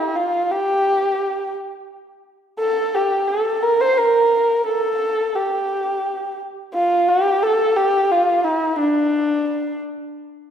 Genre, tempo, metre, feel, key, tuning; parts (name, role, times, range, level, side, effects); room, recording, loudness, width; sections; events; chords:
persian; 87 BPM; 3/4; straight; A4 = 442 Hz
dark kamancheh; solo; 0.0-9.8 s; D4 to C5; -17 LUFS; equal
wet recital hall reverb, RT60 1.9 s; heard from further back in the room; -17 LUFS; side -8 dB against mid
0.0-10.5 A section